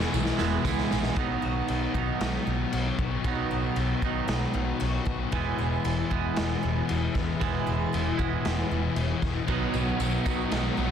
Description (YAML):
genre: rock, shoegaze and dream pop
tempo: 115 BPM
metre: 4/4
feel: straight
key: unclear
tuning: A4 = 440 Hz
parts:
  - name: picked twelve-string acoustic guitar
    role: arpeggios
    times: 0.0-10.9 s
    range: E3 to G#4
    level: -37 LUFS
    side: left 6 dB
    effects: ensemble chorus, analog delay
  - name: crunchy overdriven guitar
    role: riff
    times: 0.0-1.2, 9.5-10.9 s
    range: E2 to B3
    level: -32 LUFS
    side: equal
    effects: none
  - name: thick fuzz guitar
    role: riff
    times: 0.0-10.9 s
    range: E2 to B3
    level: -32 LUFS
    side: left 10 dB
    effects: distortion, ensemble chorus
  - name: twangy electric guitar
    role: riff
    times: 0.0-10.9 s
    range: B2 to E4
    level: -31 LUFS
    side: right 10 dB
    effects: reverse reverb
  - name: vintage muted picked electric bass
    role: bass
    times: 0.0-10.9 s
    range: E1 to C#2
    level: -31 LUFS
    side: equal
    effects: none
  - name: raw garage drum kit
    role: drums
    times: 0.0-10.6 s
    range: crash cymbal, kick drum, snare drum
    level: -32 LUFS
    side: equal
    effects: none
  - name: tambourine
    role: percussion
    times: 0.1-1.0, 9.7-10.9 s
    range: none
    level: -44 LUFS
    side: right 13 dB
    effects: none
room: little or no reverb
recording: dense, heavily limited modern master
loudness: -25 LUFS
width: side -8 dB against mid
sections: 0.0-1.2 A section; 1.2-10.9 B section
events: drum fill 0.0-1.2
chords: 0.0 E; 1.2 B; 5.3 E; 9.5 B